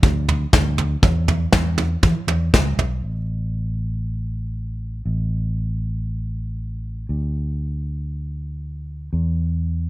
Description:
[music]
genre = indie folk with a building arrangement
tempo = 118 BPM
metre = 4/4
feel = straight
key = unclear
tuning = A4 = 440 Hz
[part]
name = fingered electric bass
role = bass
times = 0.0-9.9 s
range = A1 to E3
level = -22 LUFS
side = equal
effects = none
[part]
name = soft brush drum kit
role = drums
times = 0.0-2.9 s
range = kick drum, snare drum, toms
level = -17 LUFS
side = equal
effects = none
[sound]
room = little or no reverb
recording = none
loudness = -20 LUFS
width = side -17 dB against mid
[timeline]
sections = 0.0-3.0 A section; 3.0-9.9 B section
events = none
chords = none

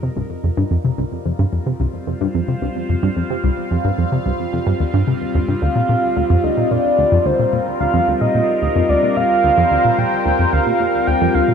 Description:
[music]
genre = ambient, sequencer-driven space music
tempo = 110 BPM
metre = 4/4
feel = straight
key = C minor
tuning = A4 = 440 Hz
[part]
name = phased analog pad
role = sustained chords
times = 0.0-11.5 s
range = G3 to F5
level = -21 LUFS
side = left 1 dB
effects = phaser, chorus
[part]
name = tight sequenced synth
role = riff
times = 0.0-11.5 s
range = C2 to C3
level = -18 LUFS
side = equal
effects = chorus, tape echo
[part]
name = soft octave-layered synth lead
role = melody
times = 5.6-11.5 s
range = C5 to G5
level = -17 LUFS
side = right 1 dB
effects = chorus, tape echo
[sound]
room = wet plate reverb, RT60 2.7 s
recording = dark, warm production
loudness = -15 LUFS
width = side -7 dB against mid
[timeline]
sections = 0.0-11.5 A section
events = fade-in on analog synth pad 0.0-11.5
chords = 0.0 Cm; 5.6 Bb

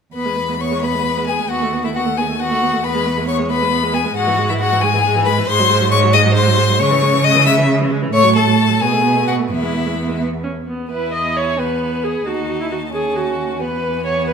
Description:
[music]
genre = quick classical-period movement for string quartet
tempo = 90 BPM (dotted quarters)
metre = 6/8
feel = rubato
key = E major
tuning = A4 = 440 Hz
[part]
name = clear violin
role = melody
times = 0.1-14.3 s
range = E5 to E6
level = -20 LUFS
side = left 8 dB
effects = none
[part]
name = rich viola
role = accompaniment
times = 0.1-14.3 s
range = E3 to D#5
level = -21 LUFS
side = right 2 dB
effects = none
[part]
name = rich cello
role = bass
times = 0.1-14.3 s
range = D#2 to C#3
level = -20 LUFS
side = right 4 dB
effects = none
[part]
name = rich violin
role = second line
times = 0.2-14.3 s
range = B3 to E5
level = -20 LUFS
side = left 3 dB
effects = none
[sound]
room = moderate recital hall reverb, RT60 1.7 s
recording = minimal, uncompressed stereo recording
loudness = -14 LUFS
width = side -6 dB against mid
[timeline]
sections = 0.1-10.9 A section; 10.9-14.3 A section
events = none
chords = 0.1 E; 1.5 B7/D#; 2.8 E; 4.2 E/G#; 5.5 G#7; 6.8 C#m; 8.1 F#m/A; 8.8 G#m7/B; 9.5 E; 12.3 D#m7b5; 13.6 E

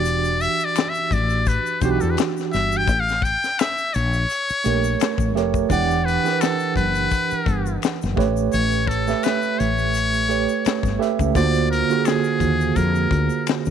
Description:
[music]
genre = R&B, neo-soul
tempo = 85 BPM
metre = 4/4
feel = swing 56% on 16ths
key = unclear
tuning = A4 = 443 Hz
[part]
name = trumpet with metal mute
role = melody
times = 0.0-13.5 s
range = G#4 to G5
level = -23 LUFS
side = left 2 dB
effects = none
[part]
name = tine electric piano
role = accompaniment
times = 0.0-13.7 s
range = D3 to F#5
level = -22 LUFS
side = right 9 dB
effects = medium tremolo
[part]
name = woody fretless electric bass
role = bass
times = 0.0-13.7 s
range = E1 to E#2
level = -23 LUFS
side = left 2 dB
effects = none
[part]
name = tight funk drum kit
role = drums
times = 0.1-13.7 s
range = hi-hat, kick drum, snare drum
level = -24 LUFS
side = left 6 dB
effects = none
[part]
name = tube shaker and finger snaps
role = percussion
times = 0.1-13.7 s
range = none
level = -35 LUFS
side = left 14 dB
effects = none
[sound]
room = light reverb, small room ambience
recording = 1960s-style stereo with parts hard left and right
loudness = -18 LUFS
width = side -8 dB against mid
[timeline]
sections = 0.0-5.7 A section; 5.7-13.7 B section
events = none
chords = 0.0 Em9; 2.9 A7b9; 5.7 Em9; 8.2 A9; 11.3 D7alt

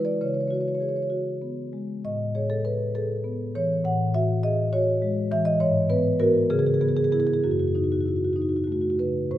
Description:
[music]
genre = classical, contemporary piece for solo marimba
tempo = 63-69 BPM (dotted quarters)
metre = 6/8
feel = rubato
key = F# dorian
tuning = A4 = 439 Hz
[part]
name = marimba with soft mallets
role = solo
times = 0.0-9.4 s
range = F#2 to F#5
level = -22 LUFS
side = equal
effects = none
[sound]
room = moderate scoring stage reverb, RT60 1.7 s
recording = none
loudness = -22 LUFS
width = side -13 dB against mid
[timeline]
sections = 0.0-9.3 A section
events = none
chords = 0.2 C#7sus4; 2.0 Asus2; 3.8 E69/A; 5.6 G#m7; 6.5 C#m7; 7.4 F#m6

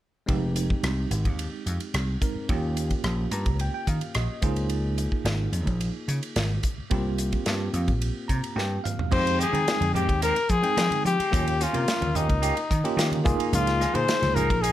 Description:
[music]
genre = electric jazz fusion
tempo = 109 BPM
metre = 4/4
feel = straight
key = F minor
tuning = A4 = 440 Hz
[part]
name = bell-like tine electric piano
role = accompaniment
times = 0.3-14.7 s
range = Ab3 to Bb5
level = -31 LUFS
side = right 2 dB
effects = medium stereo tremolo
[part]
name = vintage slap bass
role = bass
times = 0.3-14.7 s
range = F1 to F3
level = -27 LUFS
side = equal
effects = none
[part]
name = modern studio drum kit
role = drums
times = 0.3-14.7 s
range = crash cymbal, hi-hat, kick drum, ride cymbal, rim click, snare drum, toms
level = -29 LUFS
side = equal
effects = none
[part]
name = clear trumpet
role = melody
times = 9.1-14.7 s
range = Eb4 to C5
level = -25 LUFS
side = left 4 dB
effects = none
[part]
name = clean electric guitar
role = stabs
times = 9.1-14.7 s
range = Eb3 to Ab4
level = -33 LUFS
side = right 6 dB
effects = lush chorus
[part]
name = congas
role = percussion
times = 9.1-14.5 s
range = none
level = -34 LUFS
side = right 2 dB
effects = none
[sound]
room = light reverb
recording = none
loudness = -23 LUFS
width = side -13 dB against mid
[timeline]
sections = 0.3-9.1 A section; 9.1-14.7 B section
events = tine electric piano fill 3.0-4.7, 8.0-9.1; drum fill 8.6-9.1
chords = 0.3 Fm9; 2.5 Eb7; 4.4 Db69; 6.9 C7sus4; 9.1 Fm9; 11.3 Eb7; 13.3 Db69

